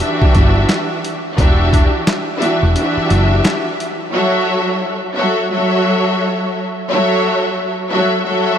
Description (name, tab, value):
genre	hip hop, boom-bap hip-hop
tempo	87 BPM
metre	4/4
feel	swing 61% on 16ths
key	F# phrygian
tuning	A4 = 441 Hz
part	clear studio string section	accompaniment	0.0-8.6 s	E3 to E5	-15 LUFS	equal	high-pass filter, low-pass filter
part	boom bap sampler-style drum kit	drums	0.0-4.0 s	handclaps, hi-hat, kick drum, snare drum	-17 LUFS	equal	none
part	hollow-body short-scale fingered electric bass	bass	0.2-3.4 s	E1 to G1	-15 LUFS	equal	none
room	moderate huge ambient reverb, RT60 9.4 s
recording	dreamy mix soaked in reverb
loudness	-13 LUFS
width	side -9 dB against mid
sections	0.0-4.1 A section; 4.1-8.6 B section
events	break 2.8-4.1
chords	0.0 Em7; 4.1 F#m7